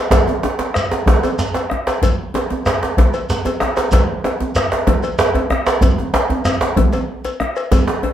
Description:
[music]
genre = west african traditional, West African drum ensemble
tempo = 126 BPM (dotted quarters)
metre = 12/8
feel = straight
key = none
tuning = none
[part]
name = bombo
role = percussion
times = 0.1-7.9 s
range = none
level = -20 LUFS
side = right 1 dB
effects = none
[part]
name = cowbell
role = percussion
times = 0.1-8.1 s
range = none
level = -24 LUFS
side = left 4 dB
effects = none
[part]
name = djembe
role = percussion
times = 0.1-8.1 s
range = none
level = -19 LUFS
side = left 2 dB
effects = none
[part]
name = djembe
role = percussion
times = 0.1-8.0 s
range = none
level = -18 LUFS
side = right 2 dB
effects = none
[part]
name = shekere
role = percussion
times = 0.1-7.9 s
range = none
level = -25 LUFS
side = right 1 dB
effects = none
[sound]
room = light reverb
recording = none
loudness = -15 LUFS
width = side -11 dB against mid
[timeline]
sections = 0.0-8.1 A section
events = none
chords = none

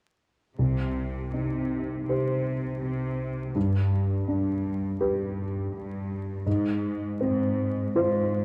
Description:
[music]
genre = cinematic, emotional film score for orchestra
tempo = 81 BPM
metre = 4/4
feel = rubato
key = C minor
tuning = A4 = 438 Hz
[part]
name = dark grand piano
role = accompaniment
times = 0.6-8.4 s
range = C2 to C5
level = -29 LUFS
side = equal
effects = none
[part]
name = warm studio cello section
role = bass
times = 0.6-8.4 s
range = G2 to C3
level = -33 LUFS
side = equal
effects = none
[sound]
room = moderate scoring stage reverb, RT60 1.7 s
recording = dark, warm production, vinyl crackle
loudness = -28 LUFS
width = mono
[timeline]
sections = 0.6-8.4 A section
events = none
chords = 0.6 Cm; 3.6 G; 6.5 Fm/Ab

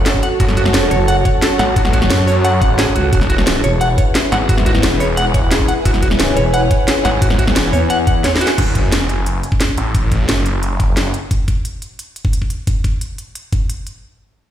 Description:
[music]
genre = dark technical drum and bass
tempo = 176 BPM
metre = 4/4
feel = straight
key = F# minor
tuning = A4 = 440 Hz
[part]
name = dark analog pad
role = sustained chords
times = 0.0-8.6 s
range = E4 to C#5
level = -23 LUFS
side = equal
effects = chorus, vintage 12-bit sampler grit, sidechain pumping
[part]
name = snarling distorted saw bass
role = bass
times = 0.0-11.1 s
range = E1 to F#2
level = -17 LUFS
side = equal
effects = tube saturation, sidechain pumping
[part]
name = granular cloud pad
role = texture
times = 0.0-9.9 s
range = E4 to A5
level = -22 LUFS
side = equal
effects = built-in reverb, sidechain pumping
[part]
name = electric guitar at the edge of break-up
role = arpeggios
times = 0.1-8.5 s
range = F#4 to F#5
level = -20 LUFS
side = equal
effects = sidechain pumping, digital delay
[part]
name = drum and bass drum kit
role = drums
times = 0.1-13.9 s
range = crash cymbal, hi-hat, snare drum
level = -19 LUFS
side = equal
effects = none
[part]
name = electronic kick drum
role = drums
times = 0.1-13.6 s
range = none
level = -16 LUFS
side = equal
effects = none
[part]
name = growling FM bass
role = bass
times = 0.9-4.0, 6.4-8.2 s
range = E1 to E2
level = -16 LUFS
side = equal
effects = none
[sound]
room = light reverb, digital ambience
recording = played on a big sound system in a bare room, stone room reverb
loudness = -13 LUFS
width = side -10 dB against mid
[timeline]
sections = 0.0-8.6 A section; 8.6-14.0 B section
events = drop 0.0-8.6; drum fill 8.2-8.6; fade-out on ambient pad 8.6-9.9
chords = 0.0 F#m; 3.1 E; 8.6 F#m

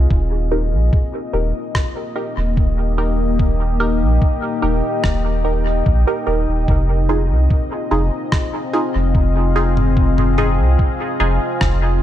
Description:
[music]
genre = ambient dub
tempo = 73 BPM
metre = 4/4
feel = straight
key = unclear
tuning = A4 = 440 Hz
[part]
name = deep dark ambient pad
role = sustained chords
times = 0.0-12.0 s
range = Bb3 to G5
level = -22 LUFS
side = left 3 dB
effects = chorus, built-in reverb
[part]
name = warm sub bass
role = bass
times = 0.0-12.0 s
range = Eb1 to C2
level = -17 LUFS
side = equal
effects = none
[part]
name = electronic kick drum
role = drums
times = 0.1-11.8 s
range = none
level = -17 LUFS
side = equal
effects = studio reverb
[part]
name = filtered dub chord stab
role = stabs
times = 0.5-12.0 s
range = Eb4 to Bb4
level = -24 LUFS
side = right 1 dB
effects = phaser, vintage 12-bit sampler grit, dub echo
[part]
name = lo-fi sampler-style drum kit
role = drums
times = 1.7-11.8 s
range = rim click, toms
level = -26 LUFS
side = right 1 dB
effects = studio reverb, dub echo
[sound]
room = light reverb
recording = none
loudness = -15 LUFS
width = side -12 dB against mid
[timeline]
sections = 0.0-12.0 A section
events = none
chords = 0.1 Eb; 6.7 Fm7

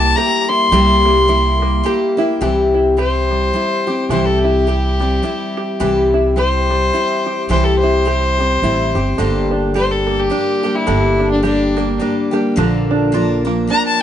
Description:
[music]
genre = acoustic folk duo or small band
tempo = 106 BPM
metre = 3/4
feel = swing 58% on 8ths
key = C mixolydian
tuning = A4 = 440 Hz
[part]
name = warm fiddle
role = melody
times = 0.0-14.0 s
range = D4 to C6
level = -18 LUFS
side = left 2 dB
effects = none
[part]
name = picked steel-string acoustic guitar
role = accompaniment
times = 0.0-14.0 s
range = G2 to Bb4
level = -18 LUFS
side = left 3 dB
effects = none
[part]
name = open-back banjo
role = arpeggios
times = 0.0-14.0 s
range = D3 to G4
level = -21 LUFS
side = right 4 dB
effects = none
[part]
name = upright bass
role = bass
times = 0.0-13.7 s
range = G1 to C2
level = -19 LUFS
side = right 1 dB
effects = none
[sound]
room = moderate studio reverb, RT60 0.6 s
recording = nothing above 10.4 kHz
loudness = -13 LUFS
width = side -10 dB against mid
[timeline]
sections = 0.0-2.4 A section; 2.4-14.0 B section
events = fiddle solo 2.4-14.0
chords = 0.0 C7; 2.4 C; 9.2 Gm; 12.6 Bb

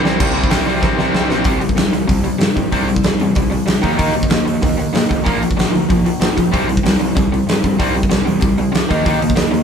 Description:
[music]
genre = punk rock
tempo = 189 BPM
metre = 4/4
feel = straight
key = unclear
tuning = A4 = 440 Hz
[part]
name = raw garage guitar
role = riff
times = 0.0-9.6 s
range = Bb2 to Eb4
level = -17 LUFS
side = left 1 dB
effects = overdrive
[part]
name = fuzz picked electric bass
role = bass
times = 0.0-9.6 s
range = Bb1 to C3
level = -23 LUFS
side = equal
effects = overdrive
[part]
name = big rock drum kit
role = drums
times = 0.1-9.6 s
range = crash cymbal, hi-hat, kick drum, snare drum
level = -17 LUFS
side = right 1 dB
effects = none
[sound]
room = light reverb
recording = band playing live in one room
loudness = -13 LUFS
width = side -7 dB against mid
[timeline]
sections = 0.2-1.5 A section; 1.5-9.6 B section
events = drum fill 0.0, 0.8-1.5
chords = 0.2 C5; 3.8 Eb5; 5.3 Bb5; 6.5 C5; 8.9 Eb5

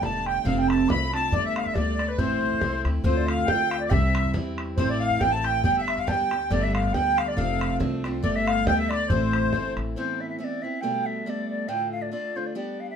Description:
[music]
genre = celtic folk, Celtic polka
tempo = 139 BPM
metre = 2/4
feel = swing 55% on 8ths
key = A minor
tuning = A4 = 441 Hz
[part]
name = bright wooden flute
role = melody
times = 0.0-13.0 s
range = B4 to D6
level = -28 LUFS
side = right 1 dB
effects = none
[part]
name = accordion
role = second line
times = 0.0-9.7 s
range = B4 to B5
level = -29 LUFS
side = left 4 dB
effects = light tremolo tuning
[part]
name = picked steel-string acoustic guitar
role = accompaniment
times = 0.0-13.0 s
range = D2 to G4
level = -28 LUFS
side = right 2 dB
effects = none
[part]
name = upright bass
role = bass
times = 0.0-9.9 s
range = E1 to D2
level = -29 LUFS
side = left 1 dB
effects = none
[part]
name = bodhran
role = percussion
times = 0.0-9.9 s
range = none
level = -29 LUFS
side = equal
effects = none
[sound]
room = moderate small room reverb, RT60 0.5 s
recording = minimal, uncompressed stereo recording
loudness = -22 LUFS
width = side -7 dB against mid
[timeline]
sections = 0.0-3.0 A section; 3.0-10.0 A section; 10.0-13.0 B section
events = none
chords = 0.5 F6; 1.3 Gadd9; 2.2 Am; 3.0 Dm7; 3.9 C; 4.8 Am; 5.6 G; 6.5 Gadd9; 7.4 F6; 8.2 Gadd9; 9.1 Am; 10.0 Amadd9; 10.8 Gadd9/B; 11.7 Dm

